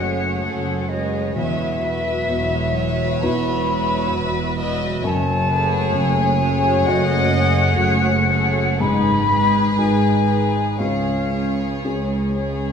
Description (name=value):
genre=cinematic, emotional film score for orchestra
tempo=56-67 BPM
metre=4/4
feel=rubato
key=F# dorian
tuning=A4 = 435 Hz
part: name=warm symphonic violin section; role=melody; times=0.0-12.3 s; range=A4 to D#5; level=-29 LUFS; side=left 4 dB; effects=none
part: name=silver concert flute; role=second line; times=0.0-11.8 s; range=D#5 to B5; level=-22 LUFS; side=left 3 dB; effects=none
part: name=warm chamber violin section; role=second line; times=0.0-12.7 s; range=G#4 to E5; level=-27 LUFS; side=left 3 dB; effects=none
part: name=dark baby grand piano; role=accompaniment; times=0.0-12.7 s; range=C#2 to C#5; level=-24 LUFS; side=left 1 dB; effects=none
part: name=dark symphonic viola section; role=accompaniment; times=0.0-12.7 s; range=F#3 to F#4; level=-27 LUFS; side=right 2 dB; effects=none
part: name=rich studio cello section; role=bass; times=0.0-12.7 s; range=E2 to C#3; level=-26 LUFS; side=right 3 dB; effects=none
part: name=warm symphonic double bass section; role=bass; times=0.0-12.7 s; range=E1 to C#2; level=-25 LUFS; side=right 3 dB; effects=none
room=wet recital hall reverb, RT60 1.6 s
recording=heard from further back in the room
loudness=-17 LUFS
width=side -7 dB against mid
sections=0.0-12.7 A section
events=none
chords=0.0 F#madd9; 1.4 Esus2; 5.0 F#madd9; 8.8 G#m; 10.8 C#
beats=0.45 | 1.36 2.28 3.23 4.14 | 5.04 5.96 6.87 7.80 | 8.81 9.78 10.80 11.84